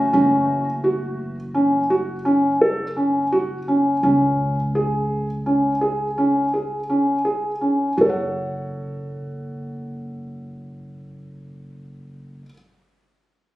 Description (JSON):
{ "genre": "contemporary instrumental, chamber music in an uneven meter", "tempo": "167 BPM (eighths)", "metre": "11/8", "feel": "straight", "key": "F# minor", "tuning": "A4 = 442 Hz", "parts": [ { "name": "felt-muted upright piano", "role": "arpeggios", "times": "0.0-12.5 s", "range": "C#4 to F#5", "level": "-19 LUFS", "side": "equal", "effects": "none" }, { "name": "upright bass", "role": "bass", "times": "0.0-12.4 s", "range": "F#1 to C#2", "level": "-30 LUFS", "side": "equal", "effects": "none" } ], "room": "moderate studio reverb, RT60 0.7 s", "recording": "recorded on a phone in the room, studio reverb, compression", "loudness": "-18 LUFS", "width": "side -16 dB against mid", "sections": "0.1-8.0 A section; 8.0-12.0 B section", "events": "none", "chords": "0.1 F#5; 4.0 C#5; 8.0 F#m", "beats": "| 0.13 0.48 0.84 1.19 1.55 1.90 2.25 2.61 2.96 3.32 3.67 | 4.03 4.38 4.74 5.10 5.46 5.82 6.17 6.53 6.89 7.25 7.61 | 7.97 8.34 8.70 9.06 9.42 9.78 10.14 10.51 10.87 11.23 11.59" }